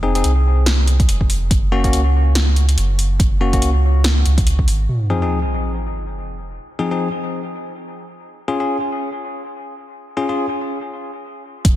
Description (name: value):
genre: deep dubstep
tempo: 142 BPM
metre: 4/4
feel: swing 58% on 16ths, half-time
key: F phrygian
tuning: A4 = 439 Hz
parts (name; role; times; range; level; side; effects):
- bell-like tine electric piano; stabs; 0.0-10.5 s; F3 to Ab4; -23 LUFS; left 3 dB; dub echo
- soft dub sub bass; bass; 0.0-4.9, 11.6-11.8 s; F1 to Db2; -15 LUFS; equal; none
- deep house drum kit; drums; 0.2-4.8, 11.6-11.7 s; hi-hat, snare drum; -22 LUFS; equal; overdrive, low-pass filter on hats, low-pass filter on snare, low-pass filter on room
- electronic kick drum; drums; 1.0-4.7, 11.6-11.7 s; none; -16 LUFS; equal; overdrive
- sub drop; sound effects; 4.9-6.6 s; none; -22 LUFS; equal; none
room: light reverb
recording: dense, heavily limited modern master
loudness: -15 LUFS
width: side -14 dB against mid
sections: 0.0-4.9 A section; 4.9-11.6 B section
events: impact 4.9-6.6; break 10.8-11.6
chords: 0.0 Fm7; 1.5 Gb; 4.9 Fm7; 8.3 Db